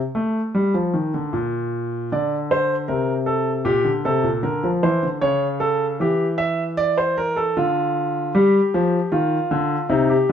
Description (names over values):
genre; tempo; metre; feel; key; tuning
classical, baroque-style two-part invention for grand piano; 77 BPM; 4/4; straight; G minor; A4 = 441 Hz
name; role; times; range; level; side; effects
warm concert grand piano; solo; 0.1-10.3 s; Bb2 to E5; -18 LUFS; equal; none
room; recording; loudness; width
wet stone room reverb, RT60 1.0 s; heard from further back in the room; -18 LUFS; side -8 dB against mid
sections
0.0-10.3 A section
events
none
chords
0.0 N.C.; 2.1 D5; 3.7 Gm/Bb; 5.2 A7/C#; 6.8 Dm; 8.3 G5